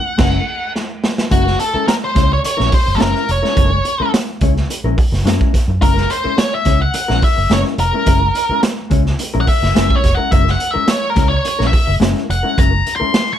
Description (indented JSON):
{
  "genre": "funk",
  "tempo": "107 BPM",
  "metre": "4/4",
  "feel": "straight",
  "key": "F# mixolydian",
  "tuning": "A4 = 439 Hz",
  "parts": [
    { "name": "octave-fuzz lead guitar", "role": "melody", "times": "0.0-13.4 s", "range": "F#4 to C#6", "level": "-18 LUFS", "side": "equal", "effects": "distortion" },
    { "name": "mellow electric guitar", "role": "accompaniment", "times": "0.2-13.2 s", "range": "G#3 to C#5", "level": "-21 LUFS", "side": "left 5 dB", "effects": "none" },
    { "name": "vintage muted fingered electric bass", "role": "bass", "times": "0.2-13.0 s", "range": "E#1 to F#2", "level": "-18 LUFS", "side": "right 1 dB", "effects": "none" },
    { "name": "raw garage drum kit", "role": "drums", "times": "0.2-13.3 s", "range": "crash cymbal, hi-hat, kick drum, snare drum", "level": "-16 LUFS", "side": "right 1 dB", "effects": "none" }
  ],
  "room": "light reverb",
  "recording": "none",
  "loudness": "-13 LUFS",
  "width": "side -10 dB against mid",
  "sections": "0.0-1.3 A section; 1.3-13.4 B section",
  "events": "band accent 0.0-1.3; drum fill 0.8-1.3; lead electric guitar solo 1.3-13.4",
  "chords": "0.0 F#9",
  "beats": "0.19 0.75 | 1.32 1.88 2.44 3.00 | 3.57 4.13 4.69 5.25 | 5.82 6.38 6.94 7.51 | 8.07 8.63 9.20 9.76 | 10.32 10.88 11.45 12.01 | 12.57 13.14"
}